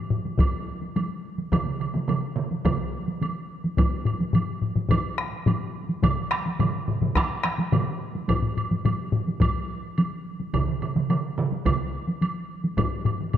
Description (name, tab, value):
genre	japanese traditional, taiko drum ensemble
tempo	107 BPM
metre	4/4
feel	straight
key	none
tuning	none
part	solo taiko drums	percussion	0.1-13.4 s	none	-26 LUFS	left 3 dB	none
part	taiko ensemble	percussion	0.3-13.4 s	none	-28 LUFS	right 1 dB	none
part	taiko ensemble	percussion	0.4-12.9 s	none	-27 LUFS	equal	none
part	woodblock	percussion	0.4-13.4 s	none	-35 LUFS	right 4 dB	none
part	taiko ensemble	percussion	1.5-11.8 s	none	-28 LUFS	right 5 dB	none
room	moderate concert hall reverb, RT60 2.0 s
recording	dark, warm production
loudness	-23 LUFS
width	side -10 dB against mid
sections	0.0-13.4 A section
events	none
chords	none